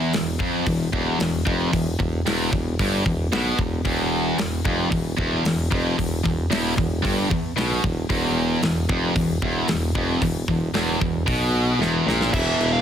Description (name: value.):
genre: heavy metal.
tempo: 113 BPM.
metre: 4/4.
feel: straight.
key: E phrygian.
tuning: A4 = 435 Hz.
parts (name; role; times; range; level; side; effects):
high-gain distorted guitar; riff; 0.0-12.8 s; E2 to E3; -22 LUFS; equal; distortion.
warm tuba; bass; 0.1-12.8 s; E1 to B1; -27 LUFS; equal; none.
tight metal drum kit; drums; 0.1-12.7 s; crash cymbal, hi-hat, kick drum, snare drum; -26 LUFS; equal; soft clipping on kick.
high-gain lead guitar; melody; 12.3-12.8 s; E5 to F5; -24 LUFS; right 1 dB; distortion.
room: small room ambience.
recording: dense, heavily limited modern master.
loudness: -20 LUFS.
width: side -9 dB against mid.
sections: 0.0-12.3 A section.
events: drum fill 11.8-12.3.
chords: 0.0 E5.